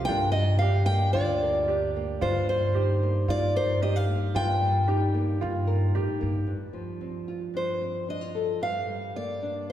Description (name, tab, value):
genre	folk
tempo	112 BPM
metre	4/4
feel	straight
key	unclear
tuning	A4 = 440 Hz
part	picked steel-string acoustic guitar	melody	0.0-9.7 s	C5 to G5	-28 LUFS	equal	none
part	nylon-string guitar	accompaniment	0.0-9.7 s	G2 to Bb4	-33 LUFS	left 2 dB	none
part	felt-muted upright piano	arpeggios	0.0-6.5 s	F4 to G4	-33 LUFS	right 5 dB	none
part	upright bass	bass	0.0-6.5 s	D2 to A2	-26 LUFS	equal	none
room	wet concert hall reverb, RT60 2.6 s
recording	recorded in a church or concert hall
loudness	-24 LUFS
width	side -11 dB against mid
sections	0.0-6.5 A section; 6.5-9.7 B section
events	none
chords	0.1 Gm; 2.2 Cm7/G; 6.5 Fsus2/G; 8.6 Gm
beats	| 0.08 0.61 1.15 1.68 | 2.22 2.75 3.29 3.82 | 4.35 4.89 5.42 5.95 | 6.49 7.02 7.56 8.09 | 8.62 9.16 9.69